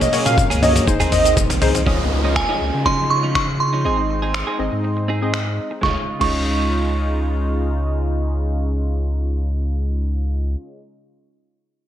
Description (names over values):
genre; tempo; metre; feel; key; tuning
dance-pop; 121 BPM; 4/4; straight; Db major; A4 = 440 Hz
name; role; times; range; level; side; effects
airy dreamy lead; melody; 0.0-1.3 s; Eb5 to F5; -20 LUFS; right 2 dB; chorus, sidechain pumping, digital delay
warm analog keys; accompaniment; 0.0-10.8 s; Bb3 to Eb5; -26 LUFS; left 3 dB; chorus, sidechain pumping, low-pass filter
chorused pulse-width pad; sustained chords; 0.0-10.4 s; Db3 to F4; -29 LUFS; left 1 dB; sidechain pumping, low-pass filter
direct-recorded clean electric guitar; riff; 0.0-10.9 s; F3 to Ab4; -28 LUFS; right 4 dB; wide subtle chorus, low-pass filter
warm sub bass; bass; 0.0-10.6 s; Ab1 to Db3; -21 LUFS; equal; sidechain pumping
trip hop sampler-style drum kit; drums; 0.0-6.3 s; crash cymbal, finger snaps, hi-hat, kick drum, shaker, snare drum, toms; -21 LUFS; equal; gated reverb
downlifter; sound effects; 1.9-5.8 s; none; -29 LUFS; right 1 dB; none
glassy synth bell; melody; 2.4-10.8 s; Ab5 to Db6; -23 LUFS; right 3 dB; chorus, low-pass filter, digital delay
room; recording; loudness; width
light reverb; bright 1980s-style digital production; -17 LUFS; side -11 dB against mid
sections
0.0-1.9 A section; 1.9-5.8 B section; 5.8-9.8 C section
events
drop 0.0-1.9; drum fill 0.0-1.9; break 3.8-5.8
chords
0.0 Gbadd9/Bb; 0.9 Ab; 1.9 Dbadd9; 3.8 Ab; 5.8 Dbadd9